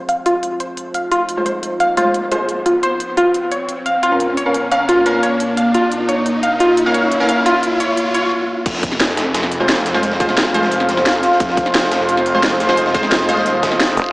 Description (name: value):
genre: dark technical drum and bass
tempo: 175 BPM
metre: 4/4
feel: straight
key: F minor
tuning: A4 = 444 Hz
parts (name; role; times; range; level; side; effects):
- deep dark ambient pad; sustained chords; 0.0-14.1 s; Bb3 to F5; -20 LUFS; equal; chorus, built-in reverb, sidechain pumping
- riser; sound effects; 0.3-8.3 s; none; -24 LUFS; equal; none
- analog pluck; arpeggios; 0.1-8.2 s; F4 to F5; -16 LUFS; equal; chorus, sidechain pumping, diffuse ambient delay
- drum and bass drum kit; drums; 0.1-14.0 s; crash cymbal, hi-hat, snare drum; -20 LUFS; equal; studio reverb
- orchestra-hit-like synth stab; stabs; 1.4-7.3, 9.6-13.4 s; Ab3 to F5; -20 LUFS; equal; built-in reverb, diffuse ambient delay
- snarling distorted saw bass; bass; 8.7-14.0 s; Eb1 to F1; -22 LUFS; equal; distortion, overdrive, sidechain pumping
- breakbeat sampler-style drum kit; drums; 8.7-14.1 s; hi-hat, snare drum; -23 LUFS; equal; high-pass filter on hats, studio reverb, high-pass filter on snare, high-pass filter on room
- electronic kick drum; drums; 8.7-13.7 s; none; -22 LUFS; equal; studio reverb
- vowel-sweep wobble bass; bass; 14.0-14.1 s; F1; -17 LUFS; equal; chorus
room: wet plate reverb, RT60 1.1 s, digital ambience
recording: dreamy mix soaked in reverb, small speaker sound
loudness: -13 LUFS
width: side -22 dB against mid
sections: 0.0-8.7 A section; 8.7-14.1 B section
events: build-up 0.0-8.7; filter sweep on synth arpeggio sound 0.0-8.7; filter sweep on synth stab 0.0-8.7; riser 0.3-8.3; stop 8.3-8.7; drop 8.7-14.1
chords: 0.0 Fm; 3.2 Bbm; 8.7 Fm